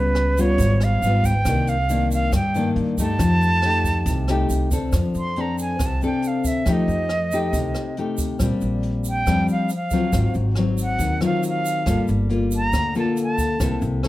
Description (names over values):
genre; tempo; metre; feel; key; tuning
bossa nova; 138 BPM; 4/4; straight; F major from 4.9 s; A4 = 441 Hz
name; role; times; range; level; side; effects
bright concert flute; melody; 0.0-13.8 s; Cb5 to C6; -24 LUFS; right 2 dB; none
nylon-string guitar; accompaniment; 0.0-14.1 s; G2 to A4; -22 LUFS; left 2 dB; none
upright bass; bass; 0.0-14.1 s; G1 to G2; -23 LUFS; equal; none
jazz brush drum kit; drums; 0.1-14.1 s; hi-hat, kick drum, rim click; -27 LUFS; right 1 dB; none
egg shaker; percussion; 0.4-14.0 s; none; -37 LUFS; right 7 dB; none
room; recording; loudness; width
moderate large studio reverb, RT60 1.0 s; none; -18 LUFS; side -16 dB against mid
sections
0.0-4.9 A section; 4.9-14.1 B section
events
flute solo 4.9-14.1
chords
0.0 Db7#11; 1.5 Cm9; 3.2 F9; 4.9 F6; 6.7 F9; 8.4 Bb69; 10.1 Ab6; 11.9 Gm9